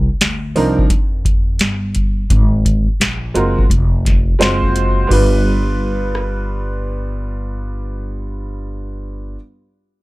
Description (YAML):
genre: hip hop, jazz-hop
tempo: 86 BPM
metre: 4/4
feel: swing 65% on 16ths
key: unclear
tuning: A4 = 440 Hz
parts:
  - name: upright bass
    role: bass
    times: 0.0-9.4 s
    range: F1 to F2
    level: -20 LUFS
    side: equal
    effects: transformer saturation
  - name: booming analog drum machine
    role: drums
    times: 0.2-6.4 s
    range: crash cymbal, hi-hat, kick drum, rim click, snare drum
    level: -15 LUFS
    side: equal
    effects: none
  - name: clear upright piano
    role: accompaniment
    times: 0.6-9.4 s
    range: F3 to C5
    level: -19 LUFS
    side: right 2 dB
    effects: none
room: digital ambience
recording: dry, gritty hardware recording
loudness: -14 LUFS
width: side -20 dB against mid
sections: 0.0-5.1 A section; 5.1-7.9 B section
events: none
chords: 0.0 Csus4; 2.3 Ab13; 5.1 G7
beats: 0.21 0.91 1.61 | 2.31 3.00 3.70 4.40 | 5.10 5.79 6.49 7.19